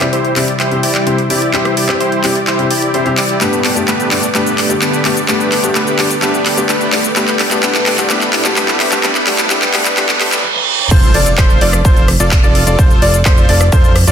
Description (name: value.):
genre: EDM, festival progressive house.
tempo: 128 BPM.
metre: 4/4.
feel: straight.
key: unclear.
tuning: A4 = 440 Hz.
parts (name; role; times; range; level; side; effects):
warm baby grand piano; accompaniment; 0.0-10.4 s; G2 to G4; -19 LUFS; left 2 dB; sidechain pumping, digital delay.
lush unison pad; sustained chords; 0.0-10.4 s; C3 to C5; -22 LUFS; left 1 dB; chorus, sidechain pumping.
dense compressed supersaw; riff; 0.0-14.1 s; A3 to D5; -16 LUFS; equal; sidechain pumping, low-pass filter, digital delay.
house drum kit; drums; 0.0-14.1 s; crash cymbal, handclaps, hi-hat, rim click, shaker, toms; -16 LUFS; equal; studio reverb.
riser, reverse cymbal and impact; sound effects; 7.0-12.8 s; none; -22 LUFS; right 4 dB; none.
bright concert grand piano; arpeggios; 10.9-14.1 s; C5 to D5; -17 LUFS; left 1 dB; sidechain pumping, digital delay.
fat analog bass; bass; 10.9-14.1 s; F1; -14 LUFS; equal; tube saturation, sidechain pumping.
electronic kick drum; drums; 10.9-13.8 s; none; -10 LUFS; equal; studio reverb.
room: moderate digital room reverb, RT60 1.0 s.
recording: dense, heavily limited modern master, high-pass filter.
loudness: -10 LUFS.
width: side -8 dB against mid.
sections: 0.0-10.9 A section; 10.9-14.1 B section.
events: build-up 0.0-10.9; drum fill 0.0-10.4, 10.4-10.9; filter sweep on supersaw synth 0.0-10.9; filter sweep on analog synth pad 0.0-10.9; filter sweep 0.0-10.9; reverse cymbal 10.0-10.9; drop 10.9-14.1; impact 10.9-12.8.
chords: 0.0 C; 3.4 Gadd9; 7.2 Amadd9; 10.9 F.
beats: 0.13 0.60 1.07 | 1.54 2.00 2.47 2.94 | 3.41 3.88 4.35 4.82 | 5.29 5.75 6.22 6.69 | 7.16 7.63 8.10 8.57 | 9.04 9.51 9.97 10.44 | 10.91 11.38 11.85 12.32 | 12.79 13.26 13.72.